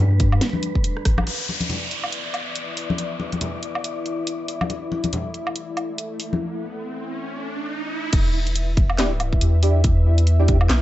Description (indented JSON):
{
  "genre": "deep dubstep",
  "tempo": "140 BPM",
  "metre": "4/4",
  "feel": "swing 58% on 16ths, half-time",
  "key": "E minor",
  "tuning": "A4 = 440 Hz",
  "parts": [
    { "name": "dark analog pad", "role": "sustained chords", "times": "0.0-10.8 s", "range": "G3 to E5", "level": "-31 LUFS", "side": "left 2 dB", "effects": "chorus" },
    { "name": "soft dub sub bass", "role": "bass", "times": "0.0-1.3, 8.1-10.8 s", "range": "E1 to G2", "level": "-18 LUFS", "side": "equal", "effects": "none" },
    { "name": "wind-like tuned noise texture", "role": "texture", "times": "0.0-6.4 s", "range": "B4 to D5", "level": "-35 LUFS", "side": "left 4 dB", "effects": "built-in reverb" },
    { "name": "electronic kick drum", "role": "drums", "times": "0.2-1.2, 8.1-10.6 s", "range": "none", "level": "-20 LUFS", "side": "equal", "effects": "none" },
    { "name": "garage drum kit", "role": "drums", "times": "0.2-10.8 s", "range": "crash cymbal, handclaps, hi-hat, rim click, snare drum, woodblock", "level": "-26 LUFS", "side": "right 1 dB", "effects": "none" },
    { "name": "congas", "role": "percussion", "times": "0.5-6.4 s", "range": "none", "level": "-27 LUFS", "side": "left 2 dB", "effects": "none" },
    { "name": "downlifter and riser", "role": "sound effects", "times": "1.3-8.1 s", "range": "none", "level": "-31 LUFS", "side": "right 1 dB", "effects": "none" },
    { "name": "percussive organ stab", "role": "stabs", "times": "9.0-10.6 s", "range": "D4 to G4", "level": "-27 LUFS", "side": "right 1 dB", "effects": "ensemble chorus, dub echo" }
  ],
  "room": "digital ambience",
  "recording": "nothing above 7.9 kHz",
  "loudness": "-20 LUFS",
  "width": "side -14 dB against mid",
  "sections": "0.0-1.3 A section; 1.3-8.1 B section; 8.1-10.8 C section",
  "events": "drum fill 1.0-1.3; band accent 1.2; riser 5.9-8.1; break 6.4-8.1; drop 8.1-10.8",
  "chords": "0.0 G; 1.3 E5; 8.1 Em7"
}